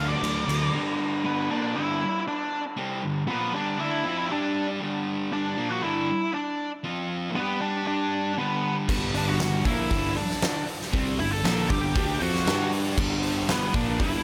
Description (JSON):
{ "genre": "quiet-loud alternative rock", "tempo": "118 BPM", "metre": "4/4", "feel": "straight", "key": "unclear", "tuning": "A4 = 441 Hz", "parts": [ { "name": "octave-fuzz lead guitar", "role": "melody", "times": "0.0-14.2 s", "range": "B3 to A5", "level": "-31 LUFS", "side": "equal", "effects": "distortion" }, { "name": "thick fuzz guitar", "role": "riff", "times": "0.0-14.2 s", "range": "G2 to G4", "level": "-32 LUFS", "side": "equal", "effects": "distortion, slapback echo" }, { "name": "thick fuzz guitar", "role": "riff", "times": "0.0-0.7, 8.9-14.2 s", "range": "G2 to G4", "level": "-36 LUFS", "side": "equal", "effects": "none" }, { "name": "fingered electric bass", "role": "bass", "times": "0.0-0.7, 8.9-14.2 s", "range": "G1 to G2", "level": "-33 LUFS", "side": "equal", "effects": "none" }, { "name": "oversized low-tuned drum kit", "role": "drums", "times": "0.2-0.6, 8.9-14.1 s", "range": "crash cymbal, hi-hat, kick drum, ride cymbal, snare drum", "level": "-32 LUFS", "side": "equal", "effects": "none" }, { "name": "biting overdriven guitar", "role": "riff", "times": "8.9-14.2 s", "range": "G2 to G4", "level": "-37 LUFS", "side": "equal", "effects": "none" } ], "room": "moderate lush hall reverb, RT60 2.5 s", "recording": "big arena sound", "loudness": "-26 LUFS", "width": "mono", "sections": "0.7-14.2 A section", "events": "none", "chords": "0.0 D; 0.7 G5; 6.8 F5; 7.4 G", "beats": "0.22 | 0.73 1.24 1.75 2.26 | 2.77 3.28 3.79 4.30 | 4.81 5.32 5.83 6.34 | 6.85 7.36 7.87 8.38 | 8.89 9.40 9.91 10.42 | 10.93 11.44 11.95 12.46 | 12.97 13.49 14.00" }